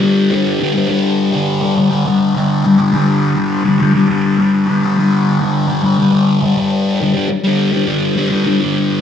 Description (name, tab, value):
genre	rock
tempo	206 BPM (eighths)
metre	7/8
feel	straight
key	unclear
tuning	A4 = 440 Hz
part	fuzz guitar	solo	0.0-9.0 s	G2 to G3	-12 LUFS	left 2 dB	distortion, phaser, slapback echo
room	moderate spring reverb, RT60 1.1 s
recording	none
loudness	-12 LUFS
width	side -8 dB against mid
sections	0.0-6.4 A section; 6.4-9.0 B section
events	none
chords	0.0 G5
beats	0.02 | 0.31 0.60 0.89 1.18 1.47 1.76 2.06 | 2.35 2.64 2.93 3.22 3.51 3.80 4.09 | 4.39 4.68 4.97 5.26 5.55 5.84 6.13 | 6.42 6.71 7.00 7.30 7.59 7.88 8.17 | 8.46 8.75